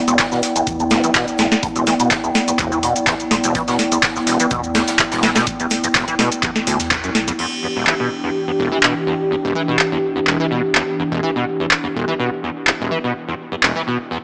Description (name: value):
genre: acid house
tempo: 125 BPM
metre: 4/4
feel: swing 53% on 16ths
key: E minor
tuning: A4 = 436 Hz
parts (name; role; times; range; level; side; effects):
- warm sub bass; bass; 0.0-7.3 s; D1 to E2; -36 LUFS; equal; tube saturation, sidechain pumping
- warbly tape-like pad; texture; 0.0-14.1 s; B3 to G5; -26 LUFS; equal; chorus, built-in reverb, sidechain pumping
- liquid acid bass; riff; 0.1-14.2 s; E1 to E3; -24 LUFS; equal; tube saturation, ensemble chorus, dub echo
- booming analog drum machine; drums; 0.1-13.7 s; crash cymbal, handclaps, hi-hat, shaker, snare drum; -20 LUFS; equal; studio reverb
- electronic kick drum; drums; 0.2-7.0 s; none; -35 LUFS; equal; studio reverb
- jazz brush drum kit; drums; 0.2-7.0 s; hi-hat, shaker, snare drum; -31 LUFS; equal; none
- warm analog pad; sustained chords; 7.4-14.1 s; E3 to G4; -24 LUFS; equal; chorus, sidechain pumping
room: moderate plate reverb, RT60 1.6 s, small room ambience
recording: small speaker sound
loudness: -18 LUFS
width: mono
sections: 0.0-7.4 A section; 7.4-14.2 B section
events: filter sweep on acid bass 0.0-7.4; band accent 6.9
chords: 0.0 Em7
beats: 0.19 0.67 1.15 | 1.63 2.11 2.59 3.07 | 3.55 4.03 4.51 4.99 | 5.47 5.95 6.43 6.91 | 7.39 7.87 8.35 8.83 | 9.31 9.79 10.27 10.75 | 11.23 11.71 12.19 12.67 | 13.15 13.63 14.11